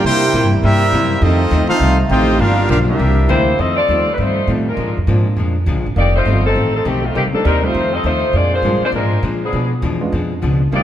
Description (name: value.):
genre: jazz.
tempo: 202 BPM.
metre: 4/4.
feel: swing 61% on 8ths.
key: F mixolydian from 3.6 s.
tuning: A4 = 440 Hz.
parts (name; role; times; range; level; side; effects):
bright trumpet section; melody; 0.0-3.4 s; C4 to G5; -18 LUFS; equal; none.
mellow trombone section; second line; 0.0-3.4 s; G3 to G4; -20 LUFS; right 3 dB; none.
archtop guitar, miked and amplified; accompaniment; 0.0-10.8 s; F2 to E4; -22 LUFS; left 3 dB; none.
warm trombone section; sustained chords; 0.0-3.6 s; C3 to F4; -24 LUFS; equal; none.
upright bass; bass; 0.0-10.8 s; F1 to C3; -17 LUFS; equal; none.
dark saxophone section; melody; 3.3-10.8 s; Eb3 to Eb5; -17 LUFS; left 1 dB; none.
warm baby grand piano; accompaniment; 3.9-10.8 s; G3 to F4; -26 LUFS; right 2 dB; none.
room: moderate concert hall reverb, RT60 2.2 s.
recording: none.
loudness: -13 LUFS.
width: side -11 dB against mid.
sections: 0.0-3.6 A section; 3.6-10.8 B section.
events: none.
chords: 0.0 C7; 1.2 F7; 2.4 Gm7; 3.0 C9; 3.6 F7; 4.8 Bb7; 6.0 F7; 7.2 Cm7; 7.7 F7; 8.3 Bb7; 9.5 Bdim7.